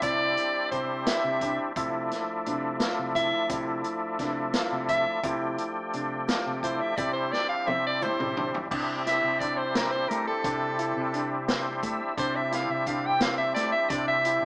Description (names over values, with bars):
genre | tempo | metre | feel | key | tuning
progressive instrumental, band music in an uneven meter | 173 BPM (eighths) | 5/8 | straight | C major | A4 = 443 Hz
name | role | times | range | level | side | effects
bright soprano saxophone | melody | 0.0-14.4 s | A4 to G5 | -26 LUFS | equal | none
overdriven tonewheel organ | accompaniment | 0.0-14.4 s | F3 to E5 | -30 LUFS | left 1 dB | chorus vibrato
bright baby grand piano | arpeggios | 0.0-14.4 s | C4 to F4 | -34 LUFS | right 1 dB | none
fretless electric bass | bass | 0.0-14.4 s | C3 to A3 | -36 LUFS | equal | none
vintage drum kit | drums | 0.0-14.4 s | crash cymbal, hi-hat, kick drum, snare drum, toms | -31 LUFS | equal | none
tube shaker | percussion | 0.0-8.3 s | none | -52 LUFS | left 1 dB | none
room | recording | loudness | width
wet studio reverb, RT60 0.8 s | band playing live in one room, small speaker sound | -25 LUFS | side -26 dB against mid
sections
0.0-8.7 A section; 8.7-14.4 B section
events
drum fill 7.3-8.7; soprano saxophone solo 8.7-14.4; tonewheel organ fill 11.1-12.2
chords
0.0 Cadd9; 1.8 Dmadd9/C; 7.0 Cadd9